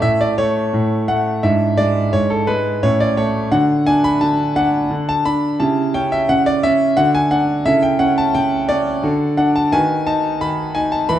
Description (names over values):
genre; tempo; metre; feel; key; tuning
classical-period piano sonatina; 87 BPM; 3/4; straight; A major; A4 = 440 Hz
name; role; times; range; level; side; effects
clear concert grand piano; solo; 0.0-11.2 s; G#2 to B5; -14 LUFS; equal; none
room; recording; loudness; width
moderate recital hall reverb, RT60 1.4 s; none; -14 LUFS; side -11 dB against mid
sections
0.0-11.2 A section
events
none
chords
0.0 A; 1.4 E7/G#; 2.8 A; 3.5 D; 5.6 C#dim; 7.0 D; 7.7 A/C#; 9.0 D; 9.7 B/D#